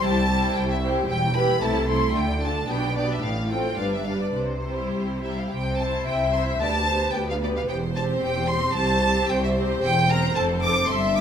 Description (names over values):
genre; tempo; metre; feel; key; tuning
quick classical-period movement for string orchestra; 112 BPM; 2/4; rubato; C major; A4 = 441 Hz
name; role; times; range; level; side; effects
rich chamber violin section; melody; 0.0-11.2 s; C5 to D6; -26 LUFS; equal; none
warm chamber violin section; second line; 0.0-11.2 s; E4 to E5; -27 LUFS; equal; none
warm studio viola section; accompaniment; 0.0-11.2 s; E3 to C5; -29 LUFS; left 1 dB; none
warm chamber cello section; bass; 0.0-11.2 s; C2 to D3; -28 LUFS; equal; none
warm chamber double bass section; bass; 0.0-11.2 s; E1 to D2; -29 LUFS; right 2 dB; none
room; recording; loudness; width
wet stone room reverb, RT60 1.1 s; none; -21 LUFS; side -8 dB against mid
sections
0.0-5.5 A section; 5.5-11.2 A section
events
none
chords
0.0 C; 1.1 Em; 1.6 Am/C; 2.2 Dm; 2.7 G/B; 3.2 F/A; 3.8 G; 4.4 C; 6.6 G/D; 7.7 C/E; 8.8 C5; 9.8 C7/E; 10.4 F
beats
| 0.02 0.56 | 1.09 1.62 | 2.15 2.69 | 3.23 3.78 | 4.36 4.94 | 5.51 6.06 | 6.61 7.14 | 7.68 8.23 | 8.77 9.30 | 9.83 10.36 | 10.89